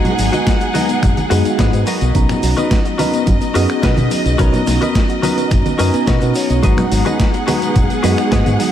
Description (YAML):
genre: nu-disco, nu disco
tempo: 107 BPM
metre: 4/4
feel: straight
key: unclear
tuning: A4 = 438 Hz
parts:
  - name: mellow tine electric piano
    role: accompaniment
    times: 0.0-8.7 s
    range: G#3 to A#5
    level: -19 LUFS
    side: equal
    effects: medium stereo tremolo, sidechain pumping, tape echo
  - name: clear symphonic string section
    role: sustained chords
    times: 0.0-8.7 s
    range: G#4 to F#5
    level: -24 LUFS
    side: right 1 dB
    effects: sidechain pumping
  - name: direct-recorded clean electric guitar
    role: riff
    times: 0.0-8.6 s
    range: F#4 to A#5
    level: -23 LUFS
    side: left 3 dB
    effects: lush chorus, tape echo
  - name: congas and tube shaker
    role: percussion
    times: 0.0-8.7 s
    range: none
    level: -25 LUFS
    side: right 1 dB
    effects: none
  - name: soft round pluck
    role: arpeggios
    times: 0.1-8.7 s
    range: F#3 to F#4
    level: -24 LUFS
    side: left 2 dB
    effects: chorus, sidechain pumping, analog delay
  - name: dusty soul sampler-style drum kit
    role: drums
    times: 0.1-8.7 s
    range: finger snaps, hi-hat, snare drum, tambourine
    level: -24 LUFS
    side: right 1 dB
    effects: overdrive
  - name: fingered electric bass with an envelope filter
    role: bass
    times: 0.2-8.6 s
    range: F#1 to B2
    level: -17 LUFS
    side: equal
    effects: none
  - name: electronic kick drum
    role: drums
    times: 0.5-8.4 s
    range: none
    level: -16 LUFS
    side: equal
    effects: none
room: light reverb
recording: none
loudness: -12 LUFS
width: side -10 dB against mid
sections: 0.0-8.7 A section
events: clean electric guitar fill 1.0-2.1, 5.5-6.6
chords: 0.0 G#m7; 1.9 Bmaj7; 6.6 G#m7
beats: 0.47 1.03 1.59 | 2.15 2.71 3.27 3.83 | 4.39 4.95 5.51 6.07 | 6.63 7.20 7.76 8.32